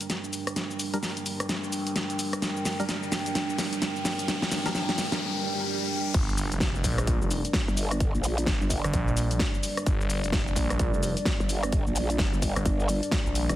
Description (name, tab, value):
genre	bass house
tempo	129 BPM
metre	4/4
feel	swing 61% on 16ths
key	G minor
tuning	A4 = 440 Hz
part	dark analog pad	sustained chords	0.0-13.6 s	G3 to G5	-32 LUFS	right 1 dB	wide subtle chorus, sidechain pumping
part	big-room dance drum kit	drums	0.0-13.6 s	crash cymbal, hi-hat, rim click, shaker, snare drum	-30 LUFS	equal	small room ambience
part	riser, swell and impact	sound effects	1.4-8.0 s	none	-36 LUFS	left 1 dB	none
part	percussive organ stab	stabs	0.9-4.7 s	G3 to Bb4	-37 LUFS	left 1 dB	chorus, phaser, sidechain pumping, dub echo
part	phased detuned saw bass	bass	6.1-13.5 s	F1 to Bb1	-28 LUFS	equal	phaser, tube saturation, sidechain pumping
part	electronic kick drum	drums	6.1-13.2 s	none	-28 LUFS	equal	small room ambience
part	growl bass	bass	7.7-13.6 s	F1 to Bb1	-28 LUFS	equal	chorus, tube saturation, sidechain pumping
room	moderate lush hall reverb, RT60 2.3 s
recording	heavily compressed radio sound, multiband compression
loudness	-25 LUFS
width	side -14 dB against mid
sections	0.0-6.1 A section; 6.1-13.6 B section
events	build-up 0.0-6.1; drum fill 0.0-5.2; filter sweep on synth stab 0.0-6.1; riser 1.4-6.1; swell 5.2-6.1; drop 6.1-13.6; impact 6.1-8.0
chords	0.0 Gm